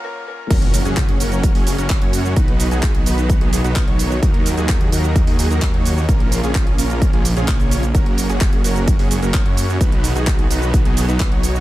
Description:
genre	EDM, festival progressive house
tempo	129 BPM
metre	4/4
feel	straight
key	F# major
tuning	A4 = 440 Hz
part	felt-muted upright piano	accompaniment	0.0-0.5 s	A#3 to A#4	-34 LUFS	left 3 dB	none
part	rich studio string section	sustained chords	0.5-11.6 s	C#3 to C#4	-25 LUFS	right 2 dB	sidechain pumping
part	dense compressed supersaw	riff	0.5-11.6 s	C#4 to C#5	-24 LUFS	right 1 dB	vintage 12-bit sampler grit, sidechain pumping, digital delay
part	detuned saw bass	bass	0.5-11.6 s	F#1 to F#2	-21 LUFS	equal	sidechain pumping, high-pass filter
part	electronic kick drum	drums	0.5-11.3 s	none	-16 LUFS	equal	none
part	house drum kit	drums	0.5-11.6 s	crash cymbal, handclaps, hi-hat, shaker	-26 LUFS	right 2 dB	high-pass filter on snare, high-pass filter on hats, high-pass filter on perc, high-pass filter on cymbals, high-pass filter on room
part	impact	sound effects	0.5-2.4 s	none	-28 LUFS	equal	none
room	little or no reverb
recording	high-pass filter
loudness	-14 LUFS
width	side -16 dB against mid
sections	0.5-11.6 A section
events	break 0.0-0.5; drop 0.5-11.6; impact 0.5-2.4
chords	0.0 A#m; 0.5 F#; 2.4 B; 4.2 D#m; 6.1 A#m; 7.9 F#; 9.8 B

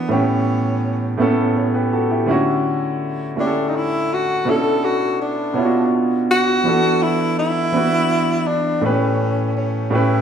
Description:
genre	R&B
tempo	55 BPM (dotted quarters)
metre	6/8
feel	straight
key	D major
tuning	A4 = 443 Hz
part	breathy tenor saxophone	melody	0.0-10.2 s	B3 to A4	-20 LUFS	left 1 dB	none
part	clear concert grand piano	accompaniment	0.0-10.2 s	A2 to C#5	-18 LUFS	right 1 dB	none
room	wet large studio reverb, RT60 1.3 s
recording	band playing live in one room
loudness	-16 LUFS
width	side -8 dB against mid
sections	0.0-10.2 A section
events	none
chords	0.1 A7; 2.3 Dmaj7; 4.5 Bm11; 6.7 E9sus4; 8.8 A7

